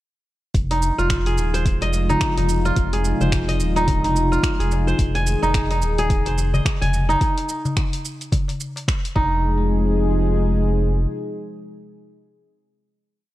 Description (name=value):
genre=organic downtempo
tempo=108 BPM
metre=4/4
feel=swing 59% on 16ths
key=F minor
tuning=A4 = 440 Hz
part: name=warm analog pad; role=sustained chords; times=0.5-12.4 s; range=C3 to Ab4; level=-25 LUFS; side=left 1 dB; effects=chorus, sidechain pumping
part: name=round analog bass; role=bass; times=0.5-11.1 s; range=Eb1 to F1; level=-21 LUFS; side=equal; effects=sidechain pumping
part: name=deep house drum kit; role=drums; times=0.5-9.1 s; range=finger snaps, hi-hat, shaker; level=-30 LUFS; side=right 1 dB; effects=overdrive
part: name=electronic kick drum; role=drums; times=0.5-9.3 s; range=none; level=-22 LUFS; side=equal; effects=overdrive
part: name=kora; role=arpeggios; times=0.7-10.8 s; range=Eb4 to Ab5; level=-23 LUFS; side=right 1 dB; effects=digital delay
part: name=darbuka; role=percussion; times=0.7-9.3 s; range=none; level=-28 LUFS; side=left 2 dB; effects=none
room=light reverb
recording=dark, warm production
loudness=-18 LUFS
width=side -15 dB against mid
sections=0.5-9.4 groove; 9.4-11.7 final hit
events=none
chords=0.5 Fm7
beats=| 0.55 1.10 1.66 2.21 | 2.77 3.32 3.88 4.43 | 4.99 5.55 6.10 6.66 | 7.21 7.77 8.32 8.88 | 9.43 9.99 10.55 11.10